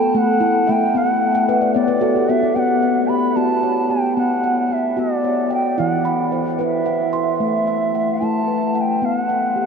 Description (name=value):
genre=world meditative, meditative tuned percussion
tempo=74 BPM (dotted quarters)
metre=6/8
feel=straight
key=B minor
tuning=A4 = 440 Hz
part: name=mellow bansuri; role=melody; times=0.0-9.7 s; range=D5 to B5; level=-20 LUFS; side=right 1 dB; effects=ping-pong delay
part: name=steel tongue drum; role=arpeggios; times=0.0-9.7 s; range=E3 to C6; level=-18 LUFS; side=left 1 dB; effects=ping-pong delay
room=wet huge ambient reverb, RT60 7.7 s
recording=in a vast, echoing space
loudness=-16 LUFS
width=side -6 dB against mid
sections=0.0-2.6 A section; 2.6-9.7 B section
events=steel tongue drum fill 1.4-2.6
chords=0.0 A5; 0.9 Bm; 2.6 B5; 5.8 Em; 7.4 A5; 9.0 B5